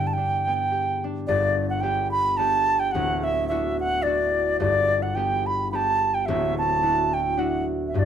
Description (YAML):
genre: celtic folk, Celtic waltz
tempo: 108 BPM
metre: 3/4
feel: swing 55% on 8ths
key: G major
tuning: A4 = 440 Hz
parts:
  - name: reedy wooden flute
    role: melody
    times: 0.0-8.1 s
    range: D5 to B5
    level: -22 LUFS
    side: right 2 dB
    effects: none
  - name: concert harp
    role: accompaniment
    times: 0.0-8.1 s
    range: D1 to G4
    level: -26 LUFS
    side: left 1 dB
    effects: none
room: moderate studio reverb, RT60 0.6 s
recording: band playing live in one room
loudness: -21 LUFS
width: side -8 dB against mid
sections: 0.0-1.3 A section; 1.3-8.1 B section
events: none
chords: 0.0 G; 2.9 Dadd9; 4.6 G; 6.3 Dadd9